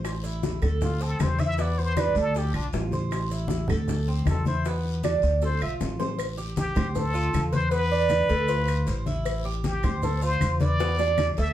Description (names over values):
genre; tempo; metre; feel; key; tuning
latin, Cuban son and guajira; 156 BPM; 4/4; straight; A minor; A4 = 441 Hz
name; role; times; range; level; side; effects
Cuban tres; arpeggios; 0.0-11.5 s; B3 to C5; -30 LUFS; right 5 dB; none
upright bass; bass; 0.0-11.5 s; A1 to E2; -26 LUFS; equal; none
bongos and cowbell; percussion; 0.0-11.5 s; none; -35 LUFS; left 6 dB; none
claves; percussion; 0.0-11.4 s; none; -41 LUFS; right 2 dB; none
guiro; percussion; 0.0-11.5 s; none; -45 LUFS; left 6 dB; none
maracas; percussion; 0.0-11.5 s; none; -48 LUFS; right 4 dB; none
congas; percussion; 0.1-11.5 s; none; -30 LUFS; left 2 dB; none
trumpet with plunger mute; melody; 0.8-11.5 s; D4 to E5; -29 LUFS; left 2 dB; none
room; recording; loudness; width
wet studio reverb, RT60 0.6 s; heard from further back in the room; -23 LUFS; side -12 dB against mid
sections
0.0-6.2 A section; 6.2-11.5 B section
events
muted trumpet solo 0.0-6.2; drum fill 5.4-6.2, 10.8-11.5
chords
0.0 Am; 0.8 D5; 1.6 E5; 2.4 Dm7; 3.1 Am; 3.9 D5; 4.7 E5; 5.4 Dm7; 6.2 Am7; 7.0 Dm7; 7.7 E5; 8.5 Dm7; 9.3 Am7; 10.0 Dm7; 10.8 E5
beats
| 0.05 0.43 0.82 1.20 | 1.58 1.97 2.35 2.74 | 3.12 3.50 3.89 4.27 | 4.66 5.04 5.42 5.81 | 6.19 6.57 6.96 7.34 | 7.72 8.11 8.49 8.88 | 9.26 9.64 10.03 10.41 | 10.80 11.18